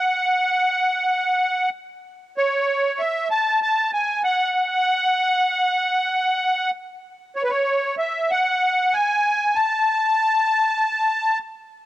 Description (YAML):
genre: folk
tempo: 96 BPM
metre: 4/4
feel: straight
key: unclear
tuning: A4 = 440 Hz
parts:
  - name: musette accordion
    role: melody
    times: 0.0-11.4 s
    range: B4 to A5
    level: -18 LUFS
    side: equal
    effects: cassette tape
room: light reverb, small room ambience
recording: home recording on cassette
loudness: -18 LUFS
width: side -14 dB against mid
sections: 0.0-11.9 A section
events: none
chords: none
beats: 0.18 0.80 1.43 | 2.05 2.68 3.31 3.93 | 4.55 5.18 5.80 6.43 | 7.05 7.68 8.30 8.93 | 9.55 10.18 10.80